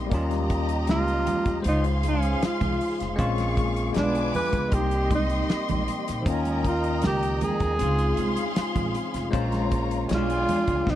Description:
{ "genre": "lush 1970s-style soul", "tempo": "78 BPM", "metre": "4/4", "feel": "straight", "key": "unclear", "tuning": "A4 = 439 Hz", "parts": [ { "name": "warm studio string section", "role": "second line", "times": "0.0-11.0 s", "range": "Eb4 to D6", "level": "-32 LUFS", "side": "left 2 dB", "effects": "none" }, { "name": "bell-like tine electric piano", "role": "accompaniment", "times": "0.0-11.0 s", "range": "Eb3 to Db5", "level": "-30 LUFS", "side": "left 4 dB", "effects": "medium stereo tremolo" }, { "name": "mellow French horn section", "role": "sustained chords", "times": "0.0-11.0 s", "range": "C3 to C5", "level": "-36 LUFS", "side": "right 1 dB", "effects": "stereo widening" }, { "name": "upright bass", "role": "bass", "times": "0.0-11.0 s", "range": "F1 to Eb2", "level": "-28 LUFS", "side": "equal", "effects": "none" }, { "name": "damped 70s drum kit", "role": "drums", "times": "0.1-11.0 s", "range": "hi-hat, kick drum, snare drum", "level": "-28 LUFS", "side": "equal", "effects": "none" }, { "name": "congas", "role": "percussion", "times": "0.3-11.0 s", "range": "none", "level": "-33 LUFS", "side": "right 5 dB", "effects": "none" }, { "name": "breathy tenor saxophone", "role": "melody", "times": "0.9-11.0 s", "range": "C4 to B4", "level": "-27 LUFS", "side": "right 2 dB", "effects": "none" } ], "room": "little or no reverb", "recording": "dry, close 1970s-style studio recording", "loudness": "-22 LUFS", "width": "side -12 dB against mid", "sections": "0.0-11.0 A section", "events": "none", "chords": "0.1 Eb7; 1.7 Dbmaj7; 3.2 Bbm9; 4.0 Bdim7; 4.7 Cm7; 6.3 Eb7; 7.8 Dbmaj7; 9.3 Bbm9; 10.1 Bdim7", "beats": "| 0.12 0.88 1.65 2.42 | 3.19 3.96 4.73 5.50 | 6.26 7.03 7.80 8.57 | 9.34 10.10 10.87" }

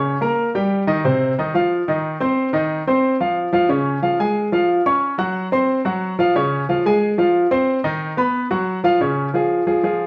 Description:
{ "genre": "latin", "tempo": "181 BPM", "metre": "4/4", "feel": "straight", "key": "unclear", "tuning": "A4 = 441 Hz", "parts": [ { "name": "clear baby grand piano", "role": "solo", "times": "0.0-10.1 s", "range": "C3 to Db6", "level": "-19 LUFS", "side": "equal", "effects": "none" } ], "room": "wet studio reverb, RT60 0.8 s", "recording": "band playing live in one room", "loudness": "-19 LUFS", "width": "mono", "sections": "0.0-9.0 A section; 9.0-10.1 B section", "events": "none", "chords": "0.4 Eb; 1.0 F5; 2.4 Cm/Eb; 3.0 F5; 3.7 Db; 5.0 Gb5; 5.7 F5; 6.4 Dbmaj7; 7.7 Cmmaj7/Eb; 8.3 B5; 9.0 Db", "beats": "0.05 0.38 0.72 | 1.05 1.38 1.71 2.04 | 2.38 2.71 3.04 3.37 | 3.70 4.03 4.37 4.70 | 5.03 5.36 5.69 6.02 | 6.35 6.69 7.02 7.35 | 7.68 8.01 8.34 8.67 | 9.01 9.34 9.67 10.00" }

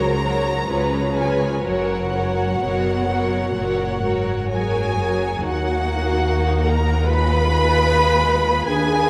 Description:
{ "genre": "classical, slow romantic movement for string orchestra", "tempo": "61-75 BPM", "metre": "4/4", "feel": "rubato", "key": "F# major, Eb minor from 5.4 s", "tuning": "A4 = 440 Hz", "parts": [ { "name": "warm symphonic violin section", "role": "melody", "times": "0.0-9.1 s", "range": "F#5 to Cb6", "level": "-27 LUFS", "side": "equal", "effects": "none" }, { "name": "rich symphonic violin section", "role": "second line", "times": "0.0-9.1 s", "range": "Ab3 to C#5", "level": "-27 LUFS", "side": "equal", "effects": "none" }, { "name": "rich symphonic viola section", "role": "accompaniment", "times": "0.0-9.1 s", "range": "F#3 to Cb5", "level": "-25 LUFS", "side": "equal", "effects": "none" }, { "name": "rich studio double bass section", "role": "bass", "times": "0.0-9.1 s", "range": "F#1 to Eb2", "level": "-26 LUFS", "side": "equal", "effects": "none" }, { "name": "rich symphonic cello section", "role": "bass", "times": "0.0-9.1 s", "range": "Eb2 to C#3", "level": "-29 LUFS", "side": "equal", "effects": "none" } ], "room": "wet cathedral reverb, RT60 7.1 s", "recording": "in a vast, echoing space", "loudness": "-20 LUFS", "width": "mono", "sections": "0.0-5.4 A section; 5.4-9.1 B section", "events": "none", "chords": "0.0 F#/C#; 0.7 C#7; 1.6 F#; 5.4 Ebm; 7.1 Fm7b5/Eb", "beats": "0.68 | 1.63 2.60 3.56 4.51 | 5.44 6.26 7.07 7.87 | 8.68" }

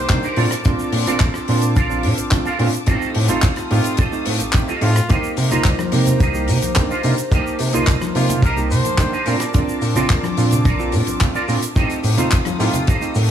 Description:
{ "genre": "nu-disco, nu disco", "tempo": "108 BPM", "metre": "4/4", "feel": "straight", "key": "unclear", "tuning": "A4 = 440 Hz", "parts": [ { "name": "clear trumpet section", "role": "melody", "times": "0.0-12.8 s", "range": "F4 to C5", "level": "-29 LUFS", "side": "left 1 dB", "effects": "dub echo" }, { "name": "warm electric grand piano", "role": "accompaniment", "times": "0.0-13.3 s", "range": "A3 to G4", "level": "-22 LUFS", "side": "right 2 dB", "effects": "sidechain pumping, dub echo" }, { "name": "warm chamber string section", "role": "sustained chords", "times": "0.0-13.3 s", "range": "A4 to Eb6", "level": "-31 LUFS", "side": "left 3 dB", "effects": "sidechain pumping" }, { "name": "chorused synth bass", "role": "bass", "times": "0.0-13.3 s", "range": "A1 to C3", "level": "-20 LUFS", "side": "equal", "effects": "none" }, { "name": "downlifter", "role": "sound effects", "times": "0.0-0.7 s", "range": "none", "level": "-39 LUFS", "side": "equal", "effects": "none" }, { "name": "damped 70s drum kit", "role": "drums", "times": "0.1-13.3 s", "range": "handclaps, hi-hat, rim click, shaker", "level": "-25 LUFS", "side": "left 2 dB", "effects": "studio reverb" }, { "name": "kick drum", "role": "drums", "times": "0.1-13.0 s", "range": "none", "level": "-17 LUFS", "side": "equal", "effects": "studio reverb" }, { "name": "electric guitar with an envelope filter", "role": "riff", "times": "0.2-13.2 s", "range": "Eb4 to F5", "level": "-26 LUFS", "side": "right 3 dB", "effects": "ensemble chorus, dub echo" }, { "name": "tube shaker, congas and bongos", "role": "percussion", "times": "5.1-13.3 s", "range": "none", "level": "-26 LUFS", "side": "left 2 dB", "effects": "none" } ], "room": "studio reverb", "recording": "small room ambience", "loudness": "-15 LUFS", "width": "side -10 dB against mid", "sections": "0.0-13.3 A section", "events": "none", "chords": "0.4 Bbmaj7; 2.9 F7/A; 5.1 Cm7; 9.3 Bbmaj7; 11.8 F7/A", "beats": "0.10 | 0.65 1.21 1.76 2.32 | 2.88 3.43 3.99 4.54 | 5.10 5.65 6.21 6.76 | 7.32 7.88 8.43 8.99 | 9.54 10.10 10.65 11.21 | 11.77 12.32 12.88" }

